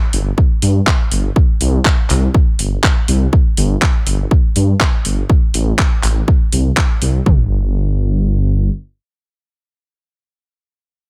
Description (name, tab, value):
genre	progressive house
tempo	122 BPM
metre	4/4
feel	straight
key	unclear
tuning	A4 = 440 Hz
part	dark detuned saw bass	bass	0.1-8.7 s	G1 to G2	-17 LUFS	equal	tube saturation, sidechain pumping
part	pop drum kit	drums	0.1-7.1 s	handclaps, hi-hat	-21 LUFS	equal	none
part	pop drum kit	drums	0.4-7.4 s	kick drum, toms	-16 LUFS	equal	none
room	little or no reverb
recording	none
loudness	-15 LUFS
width	mono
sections	0.0-7.3 A section; 7.3-11.1 B section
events	drop 0.0-7.3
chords	none